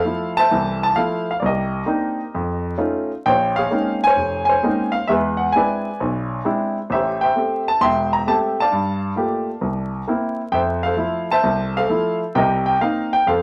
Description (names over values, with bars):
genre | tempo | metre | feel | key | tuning
solo jazz | 132 BPM | 4/4 | swing 68% on 8ths | F major | A4 = 440 Hz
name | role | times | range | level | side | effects
warm grand piano | solo | 0.0-13.4 s | E1 to C6 | -20 LUFS | equal | none
room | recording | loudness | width
moderate studio reverb, RT60 0.6 s | vinyl crackle | -20 LUFS | mono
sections
0.0-13.4 A section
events
none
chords
0.0 Fmaj7; 1.4 Cm9; 2.3 F7b13; 3.2 Bbm11; 5.1 E7b13; 6.9 Am7; 8.7 Gm9; 9.6 C7; 10.5 Fmaj7; 12.3 Cm7